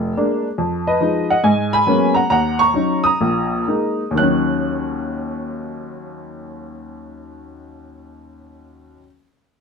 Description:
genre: jazz.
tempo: 121-143 BPM.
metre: 4/4.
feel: swing 66% on 8ths.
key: Eb minor.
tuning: A4 = 439 Hz.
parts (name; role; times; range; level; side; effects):
warm upright piano; solo; 0.0-9.1 s; F1 to Gb6; -17 LUFS; equal; none.
room: light reverb.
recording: close, detailed microphones.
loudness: -16 LUFS.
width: side -5 dB against mid.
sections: 0.6-4.2 A section; 4.2-8.1 B section.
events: slowing down 0.6-4.2.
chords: 0.0 Bb7; 0.6 Fm7b5; 1.4 Abm11; 2.3 Ebm7; 3.2 Bb7sus4; 4.2 Ebm7.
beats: 0.17 | 0.59 1.01 1.43 1.86 | 2.30 2.75 3.21 3.68 | 4.17 4.66 5.16 5.65 | 6.15 6.64 7.14 7.63.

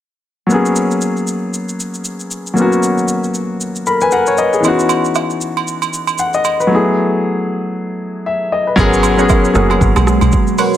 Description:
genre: amapiano.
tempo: 116 BPM.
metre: 4/4.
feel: swing 58% on 16ths.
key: G# minor.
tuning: A4 = 439 Hz.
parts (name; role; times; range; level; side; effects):
warm baby grand piano; accompaniment; 0.5-10.8 s; E3 to B5; -14 LUFS; left 2 dB; none.
deep house drum kit; drums; 0.5-10.8 s; hi-hat, kick drum, rim click, shaker; -20 LUFS; right 1 dB; none.
agogo bells and woodblock; percussion; 4.6-10.7 s; none; -20 LUFS; right 10 dB; none.
glassy FM pad; sustained chords; 9.8-10.8 s; B2 to F#4; -20 LUFS; right 3 dB; ensemble chorus, built-in reverb, phaser, sidechain pumping.
punchy chord stab; stabs; 8.8-10.8 s; A#4 to F#5; -20 LUFS; right 3 dB; chorus, tape echo.
deep log drum bass; bass; 8.8-10.3 s; F#1 to B1; -16 LUFS; right 1 dB; none.
room: light reverb, digital ambience.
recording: none.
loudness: -13 LUFS.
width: side -11 dB against mid.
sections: 0.5-8.8 A section; 8.8-10.8 B section.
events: grand piano fill 3.6-4.6; drop 8.8-10.8.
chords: 0.5 G#m11; 4.6 C#m11; 6.7 F#m11; 8.8 G#m11.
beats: | 0.50 1.02 1.54 2.05 | 2.57 3.09 3.60 4.12 | 4.64 5.16 5.67 6.19 | 6.71 7.22 7.74 8.26 | 8.78 9.29 9.81 10.33.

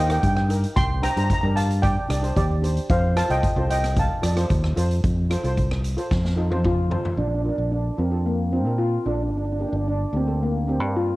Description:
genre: calypso.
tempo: 112 BPM.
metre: 4/4.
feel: straight.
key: Bb major.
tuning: A4 = 440 Hz.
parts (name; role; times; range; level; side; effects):
steel pan; melody; 0.0-11.2 s; Bb3 to C6; -25 LUFS; equal; cassette tape, analog delay.
steel pan; accompaniment; 0.0-11.1 s; Bb3 to D5; -31 LUFS; equal; cassette tape.
fingered electric bass; bass; 0.0-11.1 s; G1 to Bb2; -23 LUFS; equal; none.
street-band drum kit; drums; 0.1-7.2 s; hi-hat, kick drum, rim click, snare drum, toms; -25 LUFS; equal; cassette tape.
room: light reverb.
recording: home recording on cassette.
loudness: -20 LUFS.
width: side -19 dB against mid.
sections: 0.0-5.0 A section; 5.0-7.2 B section; 7.2-11.2 C section.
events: drum fill 6.1-7.2.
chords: 0.0 Eb; 0.8 Csus2; 2.9 F; 7.2 Bb; 9.3 Gm.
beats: 0.23 | 0.77 1.30 1.83 2.37 | 2.90 3.43 3.97 4.50 | 5.04 5.57 6.11 6.64 | 7.18 7.72 8.25 8.79 | 9.33 9.87 10.40 10.94.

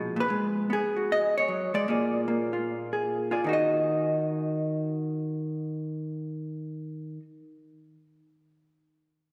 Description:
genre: solo jazz.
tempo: 152 BPM.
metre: 4/4.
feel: swing 64% on 8ths.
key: Eb minor.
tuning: A4 = 440 Hz.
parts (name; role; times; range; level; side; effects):
vintage hollow-body jazz guitar; solo; 0.0-7.2 s; Bb2 to Eb5; -29 LUFS; equal; none.
room: wet church reverb, RT60 2.9 s.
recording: recorded in a church or concert hall.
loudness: -28 LUFS.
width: mono.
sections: 0.0-3.5 A section; 3.5-6.6 B section.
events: none.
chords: 0.3 Abm7; 1.9 Bb7; 3.5 Ebm.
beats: | 0.30 0.70 1.09 1.49 | 1.88 2.28 2.67 3.07 | 3.46 3.85 4.25 4.64 | 5.04 5.43 5.83 6.22.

